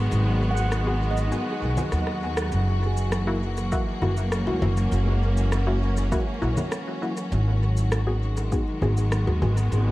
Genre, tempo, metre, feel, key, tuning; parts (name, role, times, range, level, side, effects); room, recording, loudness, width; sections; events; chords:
ambient dub; 100 BPM; 4/4; straight; A4 = 440 Hz
rich studio string section; sustained chords; 0.0-9.9 s; D#3 to F#4; -29 LUFS; equal
handpan; arpeggios; 0.0-9.9 s; G#3 to F#5; -36 LUFS; right 2 dB; tape echo
upright bass; bass; 0.0-9.9 s; F#1 to D#2; -23 LUFS; equal
wind-like tuned noise texture; texture; 0.0-2.5 s; F#5; -40 LUFS; right 3 dB; built-in reverb
electronic cabasa, rim click and congas; drums; 0.1-9.8 s; -33 LUFS; left 1 dB; studio reverb, dub echo
filtered dub chord stab; stabs; 0.9-9.5 s; A#3 to G#4; -32 LUFS; left 1 dB; chorus, dub echo
electronic kick drum; drums; 3.7-8.6 s; -27 LUFS; equal; studio reverb
light reverb, studio reverb; vinyl crackle; -22 LUFS; side -17 dB against mid
0.0-2.5 A section; 2.5-9.9 B section
kick drops out 0.1-2.5; drum fill 1.9-2.5; band accent 2.4
0.0 G#m7; 2.5 F#7; 7.3 G#m7